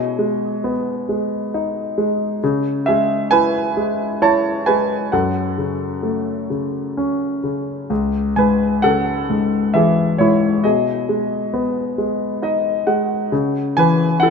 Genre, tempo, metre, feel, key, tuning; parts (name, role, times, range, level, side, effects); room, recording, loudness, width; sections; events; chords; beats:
classical, lyrical solo piano; 44 BPM (dotted quarters); 6/8; rubato; C# minor; A4 = 445 Hz
clear concert grand piano; solo; 0.0-14.3 s; C#2 to A5; -16 LUFS; equal
wet plate reverb, RT60 3.3 s; heard from further back in the room; -16 LUFS; side -5 dB against mid
0.0-14.3 A section
grand piano fill 12.0-13.3
0.0 G#m/B; 2.4 C#m; 5.1 F#m; 7.9 C#m; 10.6 G#m/B; 13.3 C#m
1.09 | 2.42 3.77 | 5.12 6.49 | 7.90 9.29 | 10.64 11.97 | 13.32